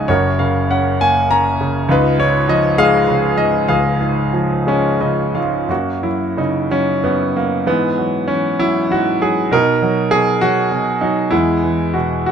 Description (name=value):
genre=classical, lyrical solo piano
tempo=58-68 BPM (dotted quarters)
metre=6/8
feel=rubato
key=F# mixolydian from 5.7 s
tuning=A4 = 443 Hz
part: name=clear concert grand piano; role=solo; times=0.0-12.3 s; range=F#1 to A#5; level=-14 LUFS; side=equal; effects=none
room=little or no reverb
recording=close, detailed microphones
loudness=-14 LUFS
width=side -7 dB against mid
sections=0.0-5.7 A section; 5.7-12.3 B section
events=grand piano fill 4.7-5.7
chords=0.1 F#; 1.9 C#add9; 5.7 F#; 7.7 Eadd9/G#; 9.5 B; 11.3 Eadd9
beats=| 0.09 1.00 | 1.90 2.79 | 3.69 4.67 | 5.70 6.71 | 7.66 8.60 | 9.52 10.42 | 11.32 12.28